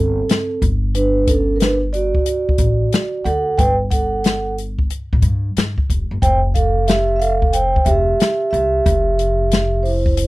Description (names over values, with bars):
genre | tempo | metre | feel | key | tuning
hip hop, jazz-hop | 91 BPM | 4/4 | swing 65% on 16ths | unclear | A4 = 444 Hz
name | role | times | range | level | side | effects
vibraphone with soft mallets | accompaniment | 0.0-10.3 s | C4 to G5 | -18 LUFS | right 2 dB | none
upright bass | bass | 0.0-10.3 s | E1 to G2 | -20 LUFS | equal | none
open jazz drum kit | drums | 0.3-10.3 s | hi-hat, kick drum, snare drum | -18 LUFS | left 1 dB | none
room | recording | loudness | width
little or no reverb | dry, close 1970s-style studio recording | -15 LUFS | side -19 dB against mid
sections
0.0-10.3 A section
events
vibraphone solo 0.0-10.3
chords
0.0 Fadd9 (rootless); 0.6 Gmaj7sus2; 6.2 Fmaj9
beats
0.29 | 0.95 1.61 2.27 2.93 | 3.59 4.25 4.90 5.56 | 6.22 6.88 7.54 8.20 | 8.86 9.52 10.18